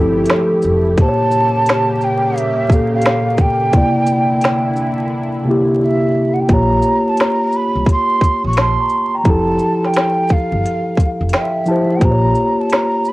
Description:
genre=lo-fi hip hop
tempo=87 BPM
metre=4/4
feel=swing 64% on 16ths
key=unclear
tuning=A4 = 439 Hz
part: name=vibraphone with soft mallets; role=second line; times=0.0-0.9 s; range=C4 to A4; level=-22 LUFS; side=right 1 dB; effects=low-pass filter, analog delay
part: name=mellow tine electric piano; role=accompaniment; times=0.0-13.1 s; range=Bb2 to Db6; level=-16 LUFS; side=equal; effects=cassette tape, low-pass filter
part: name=lush unison pad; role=sustained chords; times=0.0-6.5 s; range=Db3 to G4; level=-26 LUFS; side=right 1 dB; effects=chorus, phaser, low-pass filter
part: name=upright bass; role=bass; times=0.0-0.9, 6.5-12.3 s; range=F1 to C2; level=-19 LUFS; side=equal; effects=transformer saturation
part: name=organic electronic drum kit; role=drums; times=0.3-13.1 s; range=finger snaps, hi-hat, kick drum, shaker, snare drum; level=-15 LUFS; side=equal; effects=cassette tape
part: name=breathy mellow jazz flute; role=melody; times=1.0-13.1 s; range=E5 to Db6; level=-18 LUFS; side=right 2 dB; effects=low-pass filter, cassette tape
room=light reverb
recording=home recording on cassette, vinyl crackle, lossy compression artefacts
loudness=-13 LUFS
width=side -18 dB against mid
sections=0.0-6.5 A section; 6.5-13.1 B section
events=silent gap 5.1-6.5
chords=0.0 Fmaj9; 1.0 Bbm6; 3.7 C9; 6.5 Bbm6; 9.3 Fmaj9; 12.0 Bbm6

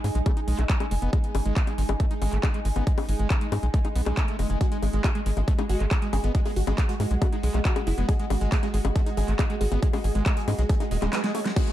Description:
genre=psychedelic trance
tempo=138 BPM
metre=4/4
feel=straight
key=unclear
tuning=A4 = 440 Hz
part: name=pulsing gated texture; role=sustained chords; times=0.0-11.7 s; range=G#3 to F#4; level=-37 LUFS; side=right 3 dB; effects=chorus, built-in reverb, sidechain pumping
part: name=screaming distorted acid line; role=riff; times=0.0-11.7 s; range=G#3 to D#4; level=-35 LUFS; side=moving between left 4 dB and right 4 dB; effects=distortion, chorus, auto-pan, sidechain pumping, ping-pong delay
part: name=tight sequencer bass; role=bass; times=0.0-11.1 s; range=D#1 to G#2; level=-24 LUFS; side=equal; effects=none
part: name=big-room dance drum kit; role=drums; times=0.0-11.7 s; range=bongos, crash cymbal, handclaps, hi-hat, snare drum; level=-32 LUFS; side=left 4 dB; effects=overdrive
part: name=airy breathy pad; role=texture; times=0.0-11.7 s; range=G#4 to G#5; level=-36 LUFS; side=right 1 dB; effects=chorus, sidechain pumping
part: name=electronic kick drum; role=drums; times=0.3-11.7 s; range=none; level=-24 LUFS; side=equal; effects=overdrive
part: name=supersaw stab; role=melody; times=4.6-11.7 s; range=G#3 to C#5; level=-34 LUFS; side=equal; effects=phaser, sidechain pumping, dub echo
part: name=swell and downlifter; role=sound effects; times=10.9-11.7 s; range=none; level=-34 LUFS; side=right 6 dB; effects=none
room=little or no reverb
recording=dark, warm production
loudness=-22 LUFS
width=side -13 dB against mid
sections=0.0-11.6 A section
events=swell 10.9-11.6; drum fill 11.1-11.6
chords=0.0 G#5

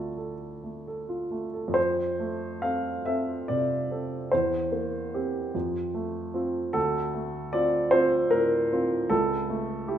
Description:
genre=classical, romantic character piece for solo piano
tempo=43-52 BPM (dotted quarters)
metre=6/8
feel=rubato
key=F major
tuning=A4 = 441 Hz
part: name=warm baby grand piano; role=solo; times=0.0-10.0 s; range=C#2 to F5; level=-25 LUFS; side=right 1 dB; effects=none
room=wet recital hall reverb, RT60 1.6 s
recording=none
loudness=-25 LUFS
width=side -10 dB against mid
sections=0.0-1.8 A section; 1.8-10.0 B section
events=none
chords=0.0 Dm; 1.8 F; 4.3 C7/E; 5.5 F; 6.8 Dm7; 9.1 A/C#

